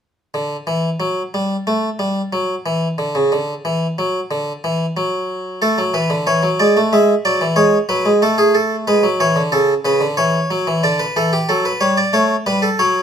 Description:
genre	classical, baroque-style two-part invention for harpsichord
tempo	92 BPM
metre	4/4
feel	straight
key	unclear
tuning	A4 = 440 Hz
part	harpsichord	solo	0.3-13.0 s	C#3 to E5	-15 LUFS	equal	none
room	moderate stone room reverb, RT60 1.0 s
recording	none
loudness	-15 LUFS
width	side -8 dB against mid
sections	0.3-13.0 A section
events	none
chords	0.3 N.C.; 5.6 A; 6.9 E7; 8.2 A; 9.5 A/C#; 10.8 D; 12.1 A7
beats	| 0.35 1.01 1.67 2.33 | 2.99 3.65 4.30 4.96 | 5.61 6.26 6.91 7.56 | 8.21 8.86 9.51 10.16 | 10.82 11.48 12.14 12.80

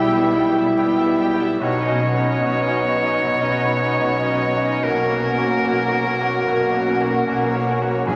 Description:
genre	cinematic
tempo	74 BPM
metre	4/4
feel	rubato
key	unclear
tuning	A4 = 439 Hz
part	muted studio violin section	melody	0.0-8.2 s	A#4 to G#5	-33 LUFS	equal	none
part	bright oboe	second line	0.0-8.2 s	G#4 to E5	-26 LUFS	equal	none
part	mellow hollow concert flute	second line	0.0-8.2 s	D#5 to G5	-31 LUFS	equal	none
part	muted studio violin section	second line	0.0-8.2 s	D#4 to A#4	-33 LUFS	equal	none
part	bright baby grand piano	accompaniment	0.0-8.2 s	B1 to G4	-29 LUFS	equal	none
part	muted symphonic viola section	accompaniment	0.0-8.2 s	G3 to C#4	-32 LUFS	equal	none
part	warm French horn section	sustained chords	0.0-8.2 s	G3 to F#4	-24 LUFS	equal	none
part	concert harp	arpeggios	0.0-8.2 s	B2 to G5	-35 LUFS	equal	none
part	muted studio cello section	bass	0.0-8.2 s	B2	-30 LUFS	equal	none
part	muted studio double bass section	bass	0.0-8.2 s	B1	-32 LUFS	equal	none
part	timpani	percussion	8.1-8.2 s	B2	-26 LUFS	equal	none
room	wet recital hall reverb, RT60 1.6 s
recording	vinyl crackle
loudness	-19 LUFS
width	mono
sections	0.0-8.2 A section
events	none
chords	0.0 Em/B; 1.6 Badd9; 4.8 F#/B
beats	0.78 | 1.60 2.41 3.22 4.03 | 4.83 5.64 6.46 7.27 | 8.07

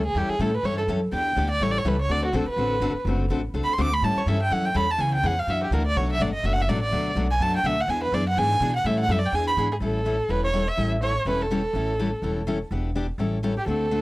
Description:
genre	acoustic string swing (jazz manouche)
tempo	249 BPM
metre	4/4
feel	swing 56% on 8ths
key	A mixolydian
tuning	A4 = 439 Hz
part	rich violin	melody	0.0-14.0 s	F#4 to D6	-25 LUFS	right 1 dB	none
part	upright bass	bass	0.0-14.0 s	E1 to B2	-26 LUFS	equal	transformer saturation
part	picked steel-string acoustic guitar	accompaniment	0.2-14.0 s	B2 to A4	-28 LUFS	left 2 dB	none
room	little or no reverb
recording	dry, gritty hardware recording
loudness	-22 LUFS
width	side -19 dB against mid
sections	0.0-9.8 A section; 9.8-14.0 B section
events	violin solo 0.0-9.8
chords	0.0 A7; 1.1 Em7; 1.6 A7; 2.1 D7; 4.0 A7; 5.0 C#m7; 5.5 F#aug7; 6.0 Bm7; 7.9 E7; 8.8 A7; 9.3 E7; 9.8 A7; 12.7 Em7; 13.2 A7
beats	| 0.16 0.40 0.64 0.88 | 1.12 1.37 1.61 1.85 | 2.09 2.33 2.58 2.82 | 3.06 3.30 3.54 3.78 | 4.03 4.27 4.51 4.75 | 4.99 5.23 5.47 5.71 | 5.95 6.20 6.44 6.68 | 6.92 7.16 7.40 7.64 | 7.88 8.12 8.36 8.61 | 8.85 9.09 9.33 9.57 | 9.81 10.05 10.29 10.53 | 10.78 11.02 11.26 11.50 | 11.74 11.98 12.22 12.47 | 12.71 12.95 13.19 13.43 | 13.67 13.91

